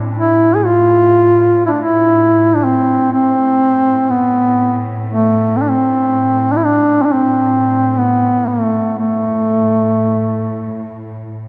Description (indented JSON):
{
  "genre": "caucasian folk, Caucasian lament",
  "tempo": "61 BPM",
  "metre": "4/4",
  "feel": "rubato",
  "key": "A minor",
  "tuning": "A4 = 440 Hz",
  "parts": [
    { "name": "warm chamber cello section", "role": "drone", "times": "0.0-11.5 s", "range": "A2", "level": "-24 LUFS", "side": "equal", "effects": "none" },
    { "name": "mellow duduk", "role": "melody", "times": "0.2-11.0 s", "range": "A3 to G#4", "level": "-14 LUFS", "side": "equal", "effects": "none" }
  ],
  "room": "wet church reverb, RT60 3.5 s",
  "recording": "dark, warm production",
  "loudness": "-14 LUFS",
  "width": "mono",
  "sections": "0.0-11.5 A section",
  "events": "none",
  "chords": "none"
}